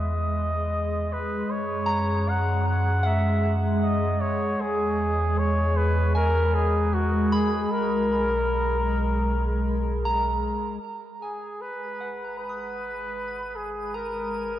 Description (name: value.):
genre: ambient.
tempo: 77 BPM.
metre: 4/4.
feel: straight.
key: G# minor.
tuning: A4 = 440 Hz.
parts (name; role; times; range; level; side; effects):
clear flugelhorn; melody; 0.0-14.6 s; F#4 to F#5; -28 LUFS; equal; diffuse ambient delay.
warm sub bass; bass; 0.0-14.6 s; G#1 to F#2; -26 LUFS; equal; none.
organ-like drone; drone; 0.0-14.6 s; G#3; -29 LUFS; equal; ensemble chorus, built-in reverb.
soft synth bell; arpeggios; 1.9-14.6 s; F#5 to D#6; -32 LUFS; equal; chorus, diffuse ambient delay.
twinkling granular texture; texture; 11.9-14.6 s; D#6; -50 LUFS; right 1 dB; built-in reverb.
room: wet cathedral reverb, RT60 5.7 s.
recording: worn, warbling old tape, cassette tape, warbly pitch drift.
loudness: -23 LUFS.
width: side -12 dB against mid.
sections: 0.0-10.8 A section; 10.8-14.6 B section.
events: fade-in on synth bell 10.8-14.6; fade-in on sub bass 10.8-14.6; fade-in on synth drone 10.8-14.6; fade-in on synth texture 10.8-14.6.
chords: 0.0 E; 1.5 F#; 4.6 E; 7.7 G#madd9/B; 10.8 G#m9.